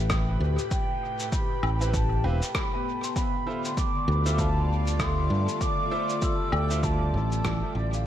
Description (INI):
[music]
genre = ambient dub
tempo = 98 BPM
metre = 4/4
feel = swing 59% on 16ths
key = unclear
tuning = A4 = 439 Hz
[part]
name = mellow hollow wooden flute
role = melody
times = 0.0-8.1 s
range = D5 to E6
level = -32 LUFS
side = right 1 dB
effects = dub echo
[part]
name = airy breathy pad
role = sustained chords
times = 0.0-8.1 s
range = A2 to D5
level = -34 LUFS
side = left 1 dB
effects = chorus, phaser
[part]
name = fingered electric bass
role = bass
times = 0.0-8.1 s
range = E1 to G2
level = -25 LUFS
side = equal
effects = none
[part]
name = electronic kick drum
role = drums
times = 0.1-7.6 s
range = none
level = -30 LUFS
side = equal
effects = overdrive
[part]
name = electronic rim click, cabasa and woodblock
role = drums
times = 0.1-8.0 s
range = none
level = -34 LUFS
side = left 1 dB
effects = dub echo
[part]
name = bright upright piano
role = stabs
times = 1.8-6.8 s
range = C4 to E5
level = -39 LUFS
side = right 2 dB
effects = dub echo
[part]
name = vibraphone with medium mallets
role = arpeggios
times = 2.7-8.1 s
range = B3 to G5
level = -37 LUFS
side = left 3 dB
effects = dub echo
[part]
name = backwards swelling texture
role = texture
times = 4.6-8.1 s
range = G3 to G4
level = -42 LUFS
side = right 2 dB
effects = none
[sound]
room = light reverb, digital ambience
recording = vinyl crackle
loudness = -24 LUFS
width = side -11 dB against mid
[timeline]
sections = 0.0-8.1 A section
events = fade-out 6.4-8.1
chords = 0.0 Am7; 3.2 Dm7